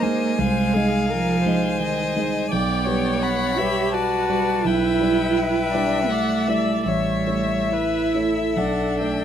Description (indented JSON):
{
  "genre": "classical, slow romantic movement for piano quintet",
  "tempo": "84 BPM",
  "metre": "3/4",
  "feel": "uneven beats, rubato",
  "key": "unclear",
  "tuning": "A4 = 440 Hz",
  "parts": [
    { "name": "clear violin", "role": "melody", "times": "0.0-9.2 s", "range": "E5 to B5", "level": "-26 LUFS", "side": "left 7 dB", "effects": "none" },
    { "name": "rich violin", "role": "second line", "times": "0.0-9.2 s", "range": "D5 to G5", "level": "-29 LUFS", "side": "left 5 dB", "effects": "none" },
    { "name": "warm cello", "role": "second line", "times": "0.0-9.2 s", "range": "Eb3 to G4", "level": "-23 LUFS", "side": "right 4 dB", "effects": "none" },
    { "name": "dark concert grand piano", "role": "accompaniment", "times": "0.0-9.2 s", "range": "A1 to Eb5", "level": "-25 LUFS", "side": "right 1 dB", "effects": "none" },
    { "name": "warm viola", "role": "accompaniment", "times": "0.0-9.2 s", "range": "Ab4 to D5", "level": "-28 LUFS", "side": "equal", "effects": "none" }
  ],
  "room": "light reverb",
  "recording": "close, detailed microphones",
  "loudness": "-19 LUFS",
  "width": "side -9 dB against mid",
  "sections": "0.0-9.2 A section",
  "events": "none",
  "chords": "0.4 Ab/C; 2.5 G/B; 4.7 Em7/B; 6.9 A7; 8.6 Bm7"
}